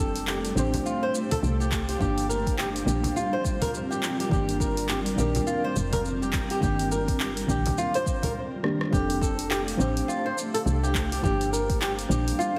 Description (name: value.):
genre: organic downtempo.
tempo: 104 BPM.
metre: 4/4.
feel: swing 60% on 16ths.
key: unclear.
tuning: A4 = 443 Hz.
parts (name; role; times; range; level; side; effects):
deep mellow chord stab; accompaniment; 0.0-12.6 s; Eb3 to C5; -34 LUFS; equal; chorus, sidechain pumping, delay, shimmer reverb.
granular cloud pad; sustained chords; 0.1-12.6 s; G3 to F5; -36 LUFS; equal; built-in reverb, sidechain pumping, shimmer reverb.
flamenco guitar; arpeggios; 0.0-12.6 s; F4 to C5; -32 LUFS; equal; delay, shimmer reverb.
woody FM bass; bass; 0.0-12.3 s; F1 to C2; -31 LUFS; equal; sidechain pumping.
deep house drum kit; drums; 0.2-12.5 s; handclaps, hi-hat, rim click, shaker; -36 LUFS; equal; none.
frame drum; percussion; 0.7-8.3 s; none; -36 LUFS; equal; none.
electronic kick drum; drums; 1.7-11.8 s; none; -31 LUFS; equal; none.
room: wet concert hall reverb, RT60 1.8 s.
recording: heavily compressed radio sound.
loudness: -26 LUFS.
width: mono.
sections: 0.0-8.9 A section; 8.9-12.6 B section.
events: drum fill 8.6.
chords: 0.0 F6; 2.0 Gm7; 4.3 Ebmaj7; 8.9 F6; 11.2 Gm7.